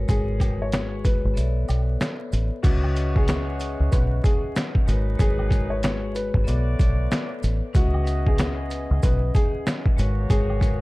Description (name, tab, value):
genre	hip hop, boom-bap hip-hop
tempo	94 BPM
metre	4/4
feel	swing 61% on 16ths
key	C# minor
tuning	A4 = 439 Hz
part	vibraphone with medium hard mallets	accompaniment	0.0-10.8 s	G#3 to F#5	-32 LUFS	left 3 dB	high-pass filter, low-pass filter
part	deep dub fingered electric bass	bass	0.0-10.8 s	G#1 to C#2	-23 LUFS	equal	none
part	dark upright piano	melody	0.1-10.8 s	F#4 to C#5	-32 LUFS	left 1 dB	high-pass filter, low-pass filter, tape echo
part	trip hop sampler-style drum kit	drums	0.1-10.8 s	crash cymbal, hi-hat, kick drum, snare drum	-22 LUFS	equal	overdrive
part	maracas and woodblock	percussion	0.1-10.8 s	none	-43 LUFS	right 1 dB	none
part	dark horn section	stabs	2.6-10.8 s	F#3 to D#5	-37 LUFS	right 1 dB	high-pass filter, low-pass filter, tape echo
room	small room ambience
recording	dark, warm production, vinyl crackle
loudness	-20 LUFS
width	side -21 dB against mid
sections	0.0-2.6 A section; 2.6-10.8 B section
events	kick muted 1.4-2.6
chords	0.0 G#m11; 1.4 Bm11; 2.6 C#m11; 4.9 G#m11; 6.5 Bm11; 7.7 C#m11; 10.0 G#m11